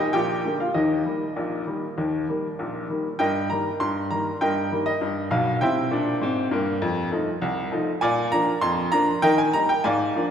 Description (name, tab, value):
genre	ragtime piano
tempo	99 BPM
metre	2/4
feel	straight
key	Eb major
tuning	A4 = 440 Hz
part	bright upright piano	solo	0.0-10.3 s	Bb1 to C6	-21 LUFS	equal	none
room	wet church reverb, RT60 3.0 s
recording	recorded in a church or concert hall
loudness	-21 LUFS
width	side -8 dB against mid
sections	0.0-3.2 A section; 3.2-10.3 B section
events	none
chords	0.1 Bb7; 0.7 Eb; 3.2 Eb/G; 5.6 C7; 6.8 F7; 8.0 Bb; 9.2 Eb